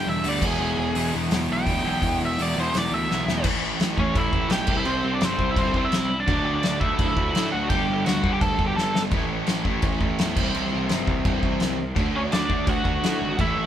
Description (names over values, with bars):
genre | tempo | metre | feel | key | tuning
punk rock | 169 BPM | 4/4 | straight | unclear | A4 = 438 Hz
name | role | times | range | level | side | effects
biting lead guitar | melody | 0.0-9.0, 12.2-13.7 s | C4 to A5 | -26 LUFS | equal | overdrive
overdriven electric guitar | riff | 0.0-13.7 s | E2 to D4 | -28 LUFS | left 4 dB | none
sludgy distorted guitar | riff | 0.0-13.7 s | G2 to F#4 | -29 LUFS | right 7 dB | overdrive
fuzz picked electric bass | bass | 0.0-13.7 s | E1 to A2 | -30 LUFS | equal | overdrive
loose indie drum kit | drums | 0.2-13.5 s | crash cymbal, hi-hat, kick drum, snare drum | -26 LUFS | equal | none
room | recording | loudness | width
light reverb | band playing live in one room | -21 LUFS | side -10 dB against mid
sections
0.0-3.5 A section; 3.5-13.7 B section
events
half time 0.0-3.5; lead electric guitar solo 0.0-3.5; drum fill 3.1-3.5, 8.8-9.1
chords
0.4 E; 3.5 A; 4.7 C; 6.3 D; 7.7 G; 9.1 A; 10.4 C; 12.0 D